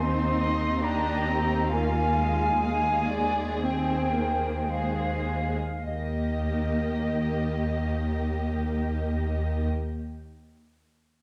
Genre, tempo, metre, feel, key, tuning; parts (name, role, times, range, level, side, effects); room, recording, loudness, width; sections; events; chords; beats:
classical, slow romantic movement for symphony orchestra; 50-73 BPM; 4/4; rubato; Eb major; A4 = 441 Hz
dark studio violin section; melody; 0.0-9.7 s; C5 to F5; -40 LUFS; equal
small flute group; second line; 0.0-9.7 s; Eb5 to C6; -33 LUFS; equal
warm studio violin section; second line; 0.0-9.7 s; Eb4 to Ab4; -39 LUFS; equal
rich studio viola section; accompaniment; 0.0-9.7 s; Ab3 to D4; -35 LUFS; equal
warm studio cello section; bass; 0.0-9.7 s; Eb2; -32 LUFS; equal
rich studio double bass section; bass; 5.8-9.7 s; Eb2; -31 LUFS; equal
wet scoring stage reverb, RT60 1.5 s; dark, warm production; -27 LUFS; mono
0.0-5.9 A section; 5.9-10.0 B section
slowing down 0.0-5.9
0.0 Ab/Eb (rootless); 1.7 Bb7(no3)/Eb; 5.9 Eb
0.83 | 1.71 2.63 3.61 4.70 | 5.85 6.90 7.93 8.98